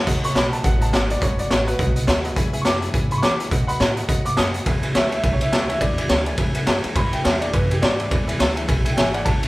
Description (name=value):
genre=rockabilly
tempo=209 BPM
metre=4/4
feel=swing 59% on 8ths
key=E mixolydian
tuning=A4 = 440 Hz
part: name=picked steel-string acoustic guitar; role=accompaniment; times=0.0-9.5 s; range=E2 to F#4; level=-33 LUFS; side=left 2 dB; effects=none
part: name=tack piano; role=accompaniment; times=0.0-9.5 s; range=B4 to B5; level=-33 LUFS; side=equal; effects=none
part: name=upright bass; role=bass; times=0.0-9.5 s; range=F#1 to C#3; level=-25 LUFS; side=equal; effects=none
part: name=raw garage drum kit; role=drums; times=0.1-9.5 s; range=crash cymbal, hi-hat, kick drum, ride cymbal, snare drum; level=-19 LUFS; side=equal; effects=none
part: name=clear upright piano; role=melody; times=0.2-9.5 s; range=F#4 to D#6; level=-26 LUFS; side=equal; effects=none
room=moderate large studio reverb, RT60 1.1 s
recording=band playing live in one room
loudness=-18 LUFS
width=side -19 dB against mid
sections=0.0-4.7 A section; 4.7-9.5 B section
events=upright piano solo 4.7-9.5; honky-tonk piano fill 6.1-7.0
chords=0.1 B7; 2.4 E7; 3.5 B7; 4.7 E7